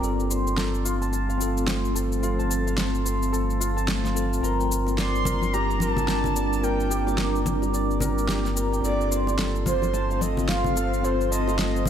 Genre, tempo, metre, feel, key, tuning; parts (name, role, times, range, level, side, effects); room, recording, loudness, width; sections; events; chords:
organic downtempo; 109 BPM; 4/4; swing 60% on 16ths; A4 = 440 Hz
tine electric piano; accompaniment; 0.0-11.9 s; C4 to Bb4; -29 LUFS; left 3 dB; medium stereo tremolo, vintage 12-bit sampler grit, tape echo
warbly tape-like pad; sustained chords; 0.0-11.9 s; F3 to D5; -32 LUFS; right 1 dB; chorus, built-in reverb, phaser
santur; arpeggios; 0.0-11.9 s; F4 to D6; -31 LUFS; equal; low-pass filter, tape echo
warm sub bass; bass; 0.0-11.9 s; G1; -27 LUFS; equal; tube saturation
electronic cabasa and snare drum; drums; 0.0-11.9 s; -30 LUFS; equal; overdrive
bongos and congas; percussion; 4.9-11.9 s; -31 LUFS; left 2 dB
breathy flute-like synth lead; melody; 5.0-11.9 s; C5 to C6; -29 LUFS; right 1 dB; wide subtle chorus, tape echo
light reverb, digital ambience; -22 LUFS; side -9 dB against mid
0.0-11.9 A section
0.0 F/G; 4.4 Gm; 8.8 F/G